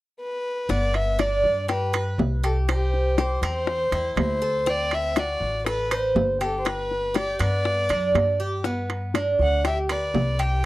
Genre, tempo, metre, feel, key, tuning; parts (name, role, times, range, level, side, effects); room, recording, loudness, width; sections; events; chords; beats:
latin, Cuban son and guajira; 121 BPM; 4/4; straight; G major; A4 = 435 Hz
warm violin; melody; 0.2-10.7 s; G4 to G5; -26 LUFS; left 1 dB
Cuban tres; arpeggios; 0.7-10.6 s; B3 to C5; -26 LUFS; right 2 dB
upright bass; bass; 0.7-10.7 s; G1 to G2; -26 LUFS; equal
bongos; percussion; 0.7-10.4 s; -28 LUFS; left 7 dB
timbales; percussion; 0.9-10.6 s; -28 LUFS; right 5 dB
light reverb; dry, close 1970s-style studio recording; -21 LUFS; side -16 dB against mid
0.7-10.7 A section
0.0 N.C.; 0.7 G; 2.7 C; 4.7 D7; 6.7 G
0.19 | 0.69 1.19 1.68 2.18 | 2.68 3.17 3.67 4.17 | 4.67 5.16 5.66 6.16 | 6.66 7.15 7.65 8.15 | 8.65 9.14 9.64 10.14 | 10.64